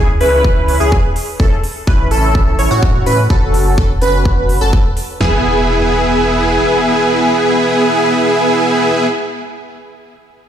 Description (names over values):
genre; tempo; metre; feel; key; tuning
EDM, festival progressive house; 126 BPM; 4/4; straight; E major; A4 = 440 Hz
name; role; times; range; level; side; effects
plucky unison lead; arpeggios; 0.0-9.1 s; F#4 to C#5; -17 LUFS; equal; analog chorus, sidechain pumping, tape echo
dense compressed supersaw; riff; 0.0-9.1 s; B3 to C#5; -15 LUFS; right 1 dB; sidechain pumping, low-pass filter, tape echo
saturated sub bass; bass; 0.0-6.6 s; E1 to A2; -17 LUFS; equal; sidechain pumping
electronic hi-hat; drums; 0.2-5.1 s; none; -29 LUFS; right 3 dB; small room ambience
big-room dance drum kit; drums; 0.4-5.3 s; kick drum, snare drum, toms; -14 LUFS; equal; small room ambience
impact; sound effects; 5.2-9.1 s; none; -25 LUFS; equal; none
room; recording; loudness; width
moderate lush hall reverb, RT60 1.9 s, digital ambience; played on a big sound system in a bare room, large studio reverb; -11 LUFS; side -10 dB against mid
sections
0.0-5.2 A section; 5.2-9.0 B section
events
filter sweep on supersaw synth 0.0-5.2; filter sweep on sub bass 0.0-5.2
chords
0.0 C#m; 1.4 A; 3.3 F#m; 5.2 E